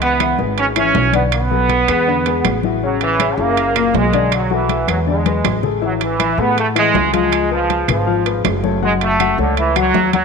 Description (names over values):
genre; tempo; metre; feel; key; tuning
latin, salsa; 160 BPM; 4/4; straight; A major; A4 = 440 Hz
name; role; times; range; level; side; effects
brilliant trombone section; melody; 0.0-10.2 s; D3 to C#4; -17 LUFS; right 3 dB; none
dark grand piano; accompaniment; 0.0-10.2 s; A#2 to F#5; -20 LUFS; left 11 dB; none
upright bass; bass; 0.0-10.2 s; F#1 to A2; -21 LUFS; right 2 dB; none
congas; percussion; 0.0-10.2 s; none; -24 LUFS; left 12 dB; none
timbales; percussion; 0.0-10.2 s; none; -24 LUFS; right 15 dB; none
claves; percussion; 0.2-9.9 s; none; -29 LUFS; right 14 dB; none
room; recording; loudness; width
moderate plate reverb, RT60 2.9 s; 1960s-style stereo with parts hard left and right; -14 LUFS; side -5 dB against mid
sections
0.0-5.8 A section; 5.8-10.2 A section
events
drum fill 5.3-5.8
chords
0.0 C#m7; 1.3 Bm7; 2.1 E7; 2.8 A6; 3.6 F#7; 4.3 Bm7; 5.1 E7; 5.8 Amaj7; 7.3 C#7; 8.8 F#m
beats
0.20 0.57 0.95 | 1.32 1.70 2.07 2.45 | 2.82 3.20 3.57 3.95 | 4.32 4.70 5.07 5.45 | 5.82 6.20 6.57 6.95 | 7.32 7.70 8.07 8.45 | 8.82 9.20 9.57 9.95